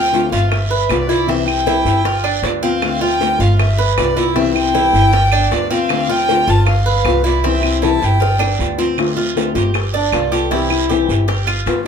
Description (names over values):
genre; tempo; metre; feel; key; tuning
latin, Cuban son and guajira; 156 BPM; 4/4; straight; unclear; A4 = 441 Hz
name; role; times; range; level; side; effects
dark violin; melody; 0.0-11.9 s; D4 to A5; -19 LUFS; left 1 dB; none
flamenco guitar; accompaniment; 0.0-11.9 s; C3 to F4; -19 LUFS; left 4 dB; none
Cuban tres; arpeggios; 0.0-11.8 s; C4 to D5; -21 LUFS; right 5 dB; none
upright bass; bass; 0.0-11.9 s; G1 to D2; -18 LUFS; right 1 dB; none
bongos; percussion; 0.1-11.9 s; none; -25 LUFS; left 3 dB; none
guiro; percussion; 0.1-11.9 s; none; -28 LUFS; right 6 dB; none
claves; percussion; 0.5-11.7 s; none; -24 LUFS; right 5 dB; none
room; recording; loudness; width
moderate small room ambience, RT60 0.5 s; band playing live in one room; -13 LUFS; side -7 dB against mid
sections
0.0-9.0 A section; 9.0-11.9 B section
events
drum fill 8.2-9.0; violin solo 9.0-11.9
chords
0.0 Dm7; 0.5 G7; 1.3 C; 2.1 G7; 2.8 Dm7; 3.6 G7; 4.4 C; 5.1 G7; 5.9 Dm7; 6.7 G7; 7.4 C; 8.2 G7; 9.0 Dm7; 9.7 G7; 10.5 C; 11.3 G7